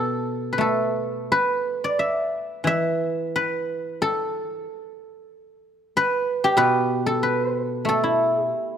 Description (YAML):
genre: chinese traditional, Chinese solo plucked strings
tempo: 86-95 BPM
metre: 4/4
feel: rubato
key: unclear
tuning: A4 = 440 Hz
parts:
  - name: guzheng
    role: solo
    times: 0.0-8.8 s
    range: B2 to E5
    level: -21 LUFS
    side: equal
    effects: none
room: light reverb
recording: close, detailed microphones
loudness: -21 LUFS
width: side -8 dB against mid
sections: 0.0-8.8 A section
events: none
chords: none